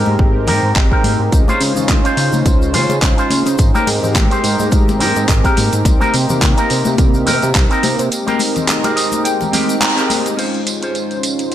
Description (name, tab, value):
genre	nu-disco, nu disco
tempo	106 BPM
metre	4/4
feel	swing 56% on 16ths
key	Ab major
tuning	A4 = 440 Hz
part	warm analog pad	accompaniment	0.0-11.5 s	Ab3 to Eb5	-19 LUFS	equal	chorus, dub echo
part	electric guitar with an envelope filter	riff	0.0-11.5 s	C4 to Bb5	-20 LUFS	right 1 dB	wide subtle chorus, low-pass filter, dub echo
part	fat analog bass	bass	0.0-8.1 s	Ab1 to Db3	-18 LUFS	equal	tube saturation
part	congas and tube shaker	percussion	0.1-10.4 s	none	-23 LUFS	left 6 dB	none
part	electronic kick drum	drums	0.2-7.7 s	none	-14 LUFS	equal	studio ambience
part	pop drum kit	drums	0.5-11.5 s	crash cymbal, handclaps, hi-hat, tambourine	-20 LUFS	right 1 dB	studio ambience
room	light reverb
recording	none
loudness	-12 LUFS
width	side -11 dB against mid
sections	0.0-10.4 A section; 10.4-11.5 B section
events	filter sweep on clean electric guitar 0.0-10.4, 10.4-11.5; clean electric guitar fill 8.7-10.4; band accent 9.8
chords	0.0 Abmaj9; 1.3 Dbmaj7; 3.6 Abmaj9; 5.9 Cm7; 8.1 Abmaj9; 10.4 Dbmaj7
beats	0.20 0.76 | 1.33 1.89 2.46 3.02 | 3.59 4.16 4.72 5.29 | 5.86 6.42 6.99 7.55 | 8.12 8.69 9.25 9.82 | 10.38 10.95 11.52